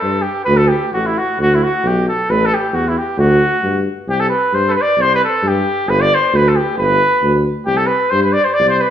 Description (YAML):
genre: balkan folk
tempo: 133 BPM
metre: 2/4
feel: swing 54% on 16ths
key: unclear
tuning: A4 = 440 Hz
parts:
  - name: warm trumpet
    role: melody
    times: 0.0-8.9 s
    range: E4 to D5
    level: -15 LUFS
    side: equal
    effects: none
  - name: mellow tuba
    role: bass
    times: 0.0-8.8 s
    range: G1 to G2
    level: -16 LUFS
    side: equal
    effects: none
room: wet stone room reverb, RT60 1.2 s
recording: band playing live in one room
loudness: -12 LUFS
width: side -10 dB against mid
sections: 0.0-4.1 A section; 4.1-8.9 B section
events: none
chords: 0.5 D5; 2.3 A5; 3.2 D; 4.1 C5; 5.9 G; 7.7 C5